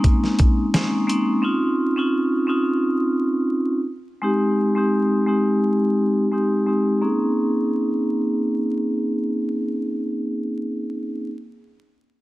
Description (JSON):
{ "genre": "hip hop, boom-bap hip-hop", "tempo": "86 BPM", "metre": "4/4", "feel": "swing 56% on 16ths", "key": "Bb dorian", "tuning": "A4 = 441 Hz", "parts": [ { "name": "vibraphone with hard mallets", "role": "accompaniment", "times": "0.0-11.3 s", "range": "Ab3 to Ab4", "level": "-19 LUFS", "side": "equal", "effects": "cassette tape, high-pass filter, low-pass filter" }, { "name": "dusty soul sampler-style drum kit", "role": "drums", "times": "0.0-1.3 s", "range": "hi-hat, kick drum, snare drum", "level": "-18 LUFS", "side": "equal", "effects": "vintage 12-bit sampler grit" } ], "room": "light reverb", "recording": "dense, heavily limited modern master, vinyl crackle", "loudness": "-19 LUFS", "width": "side -17 dB against mid", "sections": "0.0-7.0 A section; 7.0-9.8 B section", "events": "filter sweep on vibraphone 0.0-7.0", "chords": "0.0 Bbm11; 1.4 Dbmaj9; 4.2 Abmaj7; 7.0 Bbm11" }